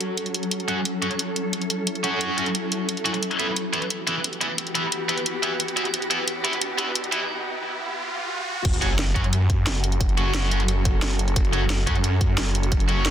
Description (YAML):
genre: dark technical drum and bass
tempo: 177 BPM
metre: 4/4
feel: straight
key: F# phrygian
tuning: A4 = 441 Hz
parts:
  - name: swarming drone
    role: sustained chords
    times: 0.0-13.1 s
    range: E3 to A4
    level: -29 LUFS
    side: left 1 dB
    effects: built-in reverb, sidechain pumping
  - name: drum and bass drum kit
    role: drums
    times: 0.0-13.1 s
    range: crash cymbal, hi-hat, snare drum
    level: -26 LUFS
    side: equal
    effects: none
  - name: heavy high-gain guitar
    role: stabs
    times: 0.7-13.1 s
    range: E3 to F#4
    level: -27 LUFS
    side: right 1 dB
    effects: distortion, low-pass filter, tape echo
  - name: riser and sub drop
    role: sound effects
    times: 5.7-10.0 s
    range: none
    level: -33 LUFS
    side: right 1 dB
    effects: none
  - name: snarling distorted saw bass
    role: bass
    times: 8.6-13.1 s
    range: F#1 to F#2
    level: -23 LUFS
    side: equal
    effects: distortion, overdrive, sidechain pumping
  - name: electronic kick drum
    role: drums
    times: 8.6-12.8 s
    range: none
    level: -23 LUFS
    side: equal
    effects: none
room: light reverb, digital ambience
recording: dense, heavily limited modern master, high-pass filter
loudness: -21 LUFS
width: side -10 dB against mid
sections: 0.0-8.7 A section; 8.7-13.1 B section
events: build-up 0.0-8.7; riser 5.7-8.7; break 7.3-8.7; drop 8.7-13.1; impact 8.7-10.0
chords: 0.0 F#m7; 3.2 Em; 8.7 F#m